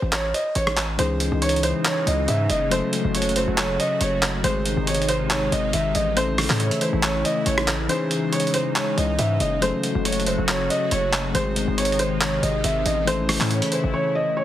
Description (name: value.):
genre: hip hop, trap.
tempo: 139 BPM.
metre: 4/4.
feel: half-time.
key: C# harmonic minor.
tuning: A4 = 435 Hz.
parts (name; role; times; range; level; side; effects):
felt-muted upright piano; melody; 0.0-14.4 s; B#4 to E5; -24 LUFS; right 1 dB; low-pass filter.
hard-hitting 808-style bass; bass; 0.0-13.9 s; F#1 to A2; -26 LUFS; equal; none.
boom bap sampler-style drum kit; drums; 0.1-13.8 s; handclaps, hi-hat, rim click; -25 LUFS; right 1 dB; none.
bell-like tine electric piano; accompaniment; 1.0-14.4 s; D#3 to A4; -28 LUFS; left 5 dB; auto-pan, low-pass filter.
sweeping resonant pad; sustained chords; 1.0-14.4 s; B#2 to F#4; -28 LUFS; equal; chorus.
room: little or no reverb.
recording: heavily compressed radio sound.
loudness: -19 LUFS.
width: side -12 dB against mid.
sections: 1.0-14.4 A section.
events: break 0.0-1.0; kick muted 7.9-8.8; drums muted 13.9-14.4.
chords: 0.0 N.C.; 1.0 C#madd9; 2.7 F#m; 4.4 G#; 6.2 A; 7.9 C#madd9; 9.6 F#m; 11.3 G#; 13.1 A.